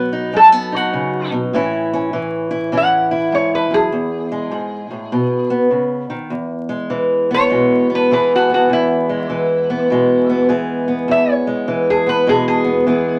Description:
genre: acoustic country blues, solo or duo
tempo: 100 BPM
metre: 4/4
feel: swing 65% on 8ths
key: E major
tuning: A4 = 441 Hz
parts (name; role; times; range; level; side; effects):
- lap resonator guitar; melody; 0.0-13.2 s; E4 to F#5; -18 LUFS; equal; none
- fingerpicked old ladder-braced acoustic guitar; accompaniment; 0.0-13.2 s; E2 to G#4; -18 LUFS; equal; none
room: light reverb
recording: vinyl crackle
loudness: -16 LUFS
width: mono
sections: 0.0-6.3 A section; 6.3-13.2 B section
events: resonator guitar played with a steel bar solo 6.3-13.2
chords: 0.0 B; 1.5 A; 3.9 E; 5.1 B; 6.3 E

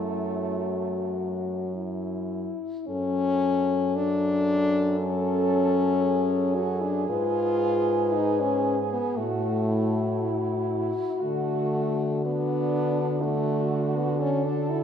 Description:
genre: classical, lyrical piece for horn quartet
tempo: 50-62 BPM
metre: 4/4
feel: rubato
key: F# minor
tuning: A4 = 439 Hz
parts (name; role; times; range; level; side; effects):
- mellow French horn; melody; 0.0-14.8 s; E4 to Cb5; -30 LUFS; left 6 dB; none
- clear French horn; second line; 0.0-14.8 s; A3 to A4; -32 LUFS; right 8 dB; none
- mellow French horn; accompaniment; 0.0-14.8 s; F#3 to F#4; -26 LUFS; left 3 dB; none
- mellow French horn; bass; 0.0-14.8 s; F#2 to D3; -29 LUFS; right 2 dB; none
room: moderate recital hall reverb, RT60 1.4 s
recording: minimal, uncompressed stereo recording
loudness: -23 LUFS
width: side -8 dB against mid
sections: 0.0-2.9 A section; 2.9-14.8 A section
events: none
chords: 0.0 F#m; 7.1 Fdim/Ab; 9.2 F#m/A; 11.2 D

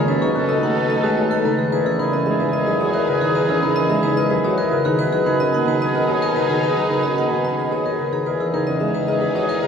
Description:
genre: classical, minimalist pattern music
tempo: 110 BPM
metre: 3/4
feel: straight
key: E lydian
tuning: A4 = 445 Hz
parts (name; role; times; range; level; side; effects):
- vibraphone with hard mallets; melody; 0.0-9.7 s; G#4 to F#5; -23 LUFS; left 4 dB; none
- folk marimba with medium mallets; accompaniment; 0.0-9.7 s; C#3 to A#3; -24 LUFS; right 1 dB; none
- warm concert grand piano; arpeggios; 0.0-9.7 s; C#4 to C#5; -24 LUFS; right 4 dB; none
- warm oboe; second line; 0.1-9.6 s; G#4 to A4; -28 LUFS; right 1 dB; none
- warm symphonic violin section; sustained chords; 0.1-9.7 s; D#4 to A4; -28 LUFS; left 3 dB; none
- glockenspiel with rubber mallets; arpeggios; 0.1-9.5 s; B5 to A6; -27 LUFS; right 2 dB; none
- mellow bassoon; bass; 0.1-9.7 s; E2 to B2; -25 LUFS; equal; none
room: wet church reverb, RT60 3.6 s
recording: recorded in a church or concert hall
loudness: -17 LUFS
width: side -7 dB against mid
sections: 0.0-1.7 A section; 1.7-9.7 B section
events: none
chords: 0.1 B13; 1.7 Emaj9#11; 5.0 B69; 8.3 Emaj9#11

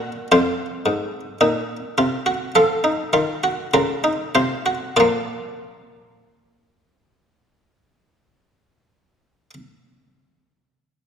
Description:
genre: classical, baroque-style 3-part fugue for harpsichord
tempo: 47-56 BPM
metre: 4/4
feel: straight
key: unclear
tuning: A4 = 439 Hz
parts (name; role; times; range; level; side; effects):
- buff-stop harpsichord; solo; 0.0-9.5 s; F2 to Eb5; -18 LUFS; equal; none
room: wet recital hall reverb, RT60 1.8 s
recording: none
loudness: -18 LUFS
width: side -7 dB against mid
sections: 0.0-5.0 A section; 5.0-10.1 B section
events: slowing down 0.0-5.0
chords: 0.3 F7sus4; 2.5 F7; 5.0 Bb

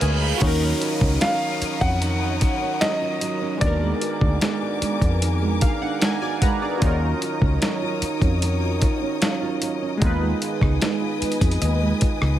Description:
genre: contemporary R&B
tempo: 75 BPM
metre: 4/4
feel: straight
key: Eb minor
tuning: A4 = 440 Hz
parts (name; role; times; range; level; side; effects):
- warm analog keys; accompaniment; 0.0-12.4 s; Ab3 to Cb6; -28 LUFS; equal; chorus, phaser
- warm symphonic string section; sustained chords; 0.0-12.4 s; Cb4 to Eb6; -32 LUFS; left 4 dB; none
- nylon-string guitar; arpeggios; 0.0-12.4 s; Eb3 to Gb4; -27 LUFS; right 5 dB; none
- vintage muted fingered electric bass; bass; 0.0-12.4 s; Db2 to F2; -22 LUFS; equal; none
- dusty soul sampler-style drum kit; drums; 0.0-12.4 s; crash cymbal, hi-hat, kick drum, rim click, snare drum; -23 LUFS; equal; none
- reverse cymbal and downlifter; sound effects; 0.0-6.8 s; none; -33 LUFS; right 2 dB; none
- soft round pluck; texture; 0.0-3.3, 9.2-12.4 s; Db5 to F5; -36 LUFS; left 2 dB; chorus, tape echo
- warm concert grand piano; melody; 1.2-5.2 s; D5 to Gb5; -26 LUFS; equal; tape echo
room: little or no reverb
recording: none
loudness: -19 LUFS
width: side -12 dB against mid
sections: 0.4-12.4 A section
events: reverse cymbal 0.0-0.4; synth keys fill 5.2-6.8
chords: 0.4 Ebm9; 3.6 Bb7b9b13; 6.8 Ebm9; 10.0 Fm7b5

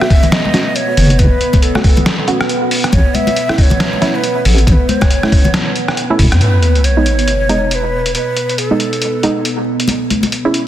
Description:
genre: deep dubstep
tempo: 138 BPM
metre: 4/4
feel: swing 59% on 16ths, half-time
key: G# phrygian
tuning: A4 = 440 Hz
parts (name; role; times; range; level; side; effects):
- breathy ney; melody; 0.0-9.7 s; A4 to E5; -19 LUFS; equal; dub echo
- deep dark ambient pad; sustained chords; 0.0-10.7 s; B3; -20 LUFS; right 2 dB; chorus, built-in reverb
- filtered dub chord stab; stabs; 0.0-10.7 s; G#3 to F#4; -19 LUFS; right 2 dB; chorus, dub echo
- trip hop sampler-style drum kit; drums; 0.0-10.6 s; hi-hat, rim click, snare drum; -18 LUFS; left 1 dB; studio reverb
- electronic kick drum; drums; 0.1-6.3 s; none; -12 LUFS; equal; studio reverb
- congas; percussion; 0.2-5.5, 9.9-10.3 s; none; -20 LUFS; left 2 dB; none
- deep soft wobble bass; bass; 1.0-6.4 s; E1 to F#2; -10 LUFS; equal; chorus
- sub drop; sound effects; 6.4-8.1 s; none; -14 LUFS; equal; none
room: light reverb, digital ambience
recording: dense, heavily limited modern master, vinyl crackle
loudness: -11 LUFS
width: side -12 dB against mid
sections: 0.0-6.4 A section; 6.4-10.7 B section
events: filter sweep on synth stab 0.0-6.4; band accent 6.3; impact 6.4-8.1; filter sweep on ambient pad 6.4-10.7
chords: 0.0 F#m; 2.9 A; 6.4 G#m; 9.9 C#m

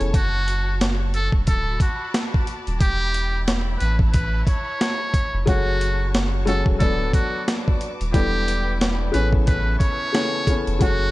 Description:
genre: hip hop, boom-bap hip-hop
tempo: 90 BPM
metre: 4/4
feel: swing 59% on 16ths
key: unclear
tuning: A4 = 440 Hz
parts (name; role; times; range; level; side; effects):
- trumpet with metal mute; melody; 0.0-11.1 s; F#4 to C#5; -26 LUFS; equal; high-pass filter, low-pass filter, digital delay
- warm upright piano; accompaniment; 0.0-0.1, 5.5-11.1 s; C#3 to F#4; -25 LUFS; left 3 dB; cassette tape, high-pass filter, low-pass filter
- clear studio string section; sustained chords; 0.0-11.1 s; E4 to D6; -35 LUFS; left 1 dB; high-pass filter, low-pass filter
- soft dub sub bass; bass; 0.0-11.1 s; D1 to A1; -23 LUFS; equal; none
- boom bap sampler-style drum kit; drums; 0.0-11.0 s; hi-hat, kick drum, snare drum; -21 LUFS; equal; vintage 12-bit sampler grit
room: small room ambience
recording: none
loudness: -19 LUFS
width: side -18 dB against mid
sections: 0.0-11.1 A section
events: none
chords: 0.1 F#m; 1.5 D6; 2.8 Em7; 3.8 Aadd9; 5.5 F#m; 6.8 D6; 8.1 Em7; 9.1 Aadd9

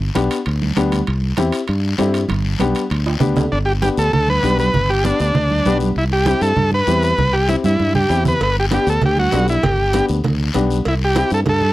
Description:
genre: latin, cumbia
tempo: 196 BPM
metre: 4/4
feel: straight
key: G major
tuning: A4 = 440 Hz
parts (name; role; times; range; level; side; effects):
- fingered electric bass; bass; 0.0-11.7 s; G1 to G2; -19 LUFS; equal; none
- congas; percussion; 0.0-11.7 s; none; -22 LUFS; right 3 dB; none
- dark upright piano; accompaniment; 0.1-11.4 s; B3 to G4; -21 LUFS; left 4 dB; none
- guiro; percussion; 0.2-11.7 s; none; -32 LUFS; left 6 dB; none
- timbales and cowbell; percussion; 0.2-3.4, 8.4-11.6 s; none; -28 LUFS; right 4 dB; none
- overdriven combo organ; melody; 3.5-11.7 s; D4 to B4; -18 LUFS; equal; none
room: light reverb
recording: dry, close 1970s-style studio recording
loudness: -15 LUFS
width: side -16 dB against mid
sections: 0.0-3.5 A section; 3.5-11.7 B section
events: drum fill 2.3-3.5, 7.5-8.4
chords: 0.0 G; 1.1 C; 2.3 G; 6.0 C; 8.4 G; 10.9 C

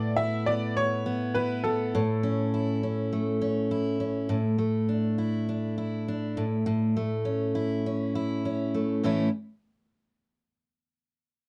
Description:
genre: acoustic pop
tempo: 101 BPM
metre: 4/4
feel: straight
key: A major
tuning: A4 = 440 Hz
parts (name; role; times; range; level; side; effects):
- clear upright piano; melody; 0.0-3.7 s; A4 to E5; -32 LUFS; equal; none
- picked steel-string acoustic guitar; accompaniment; 0.0-9.3 s; A2 to E4; -28 LUFS; equal; none
room: light reverb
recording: dry, close 1970s-style studio recording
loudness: -28 LUFS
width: mono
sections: 0.0-4.3 A section; 4.3-9.0 B section; 9.0-11.4 C section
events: none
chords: 0.0 E5/A; 1.9 A; 4.3 Dsus2/A; 6.4 A

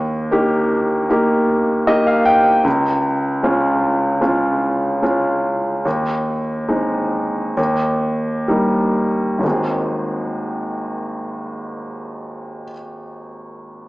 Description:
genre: pop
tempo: 62-77 BPM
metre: 4/4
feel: straight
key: Ab major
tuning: A4 = 437 Hz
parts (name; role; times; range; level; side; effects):
- clear baby grand piano; accompaniment; 0.0-13.9 s; Ab1 to G5; -17 LUFS; equal; none
room: moderate plate reverb, RT60 2.9 s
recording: live gig heard through the venue's PA, club reverb, small speaker sound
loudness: -16 LUFS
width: side -19 dB against mid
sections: 0.0-9.4 A section; 9.4-13.3 B section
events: grand piano fill 1.5-2.7; slowing down 2.7-9.4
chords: 0.0 Eb; 2.7 Db; 5.9 Ab/Eb; 7.6 Eb; 9.4 Ab

